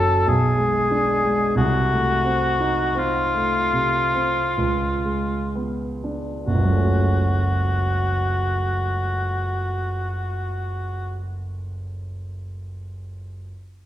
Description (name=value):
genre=classical, romantic duo for cor anglais and grand piano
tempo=29-49 BPM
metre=3/4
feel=rubato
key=F# minor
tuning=A4 = 440 Hz
part: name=warm cor anglais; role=melody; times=0.0-11.2 s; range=E#4 to A4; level=-22 LUFS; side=left 1 dB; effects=none
part: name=dark grand piano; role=accompaniment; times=0.0-13.5 s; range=F#1 to F#4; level=-22 LUFS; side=right 1 dB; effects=none
room=wet recital hall reverb, RT60 1.5 s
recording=heard from further back in the room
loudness=-19 LUFS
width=side -12 dB against mid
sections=0.0-6.5 A section; 6.5-11.3 B section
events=slowing down 0.0-6.5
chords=0.3 G#dim/B; 1.6 Cdim7; 4.6 C#7b9; 6.5 F#m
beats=0.28 | 1.58 2.98 4.58 | 6.47 8.09 9.70